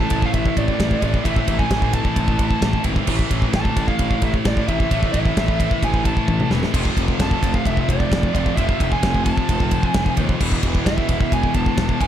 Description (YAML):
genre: heavy metal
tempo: 131 BPM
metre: 4/4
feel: straight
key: unclear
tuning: A4 = 440 Hz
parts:
  - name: bluesy overdriven lead guitar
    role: melody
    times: 0.0-12.1 s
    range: D5 to A5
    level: -26 LUFS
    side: right 2 dB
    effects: distortion
  - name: cranked stack guitar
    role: riff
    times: 0.0-12.1 s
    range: A2 to F4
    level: -27 LUFS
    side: equal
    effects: overdrive
  - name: scooped high-gain guitar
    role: riff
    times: 0.0-12.1 s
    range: E2 to A3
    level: -27 LUFS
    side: left 12 dB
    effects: distortion
  - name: scooped high-gain guitar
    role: riff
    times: 0.0-12.1 s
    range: E2 to A3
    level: -28 LUFS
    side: right 14 dB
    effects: distortion
  - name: fuzz picked electric bass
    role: bass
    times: 0.0-12.1 s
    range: E1 to D#2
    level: -24 LUFS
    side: equal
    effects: overdrive
  - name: modern studio drum kit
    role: drums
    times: 0.1-12.1 s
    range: crash cymbal, kick drum, ride cymbal, snare drum, toms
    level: -20 LUFS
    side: equal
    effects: none
room: little or no reverb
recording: dark, warm production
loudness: -17 LUFS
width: side -10 dB against mid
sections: 0.0-12.1 A section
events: drum fill 6.3-6.7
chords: 0.0 Am; 6.7 F; 10.4 E